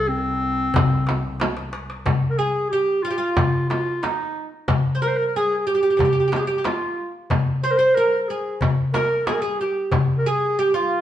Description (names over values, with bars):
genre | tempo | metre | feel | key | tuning
Turkish makam ensemble | 92 BPM | 4/4 | straight | unclear | A4 = 440 Hz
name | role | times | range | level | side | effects
warm clarinet | melody | 0.0-11.0 s | C4 to C5 | -22 LUFS | right 1 dB | none
rich double bass | drone | 0.0-2.1 s | C2 | -31 LUFS | equal | none
darbuka | percussion | 0.1-11.0 s | none | -23 LUFS | left 3 dB | none
frame drum | percussion | 0.8-10.1 s | none | -25 LUFS | right 1 dB | none
oud | second line | 2.4-11.0 s | Eb4 to C5 | -24 LUFS | right 2 dB | none
room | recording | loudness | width
wet stone room reverb, RT60 1.1 s | band playing live in one room, nothing above 10.3 kHz | -19 LUFS | side -11 dB against mid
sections
0.0-2.1 A section; 2.1-11.0 B section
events
drum fill 1.4-2.1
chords
none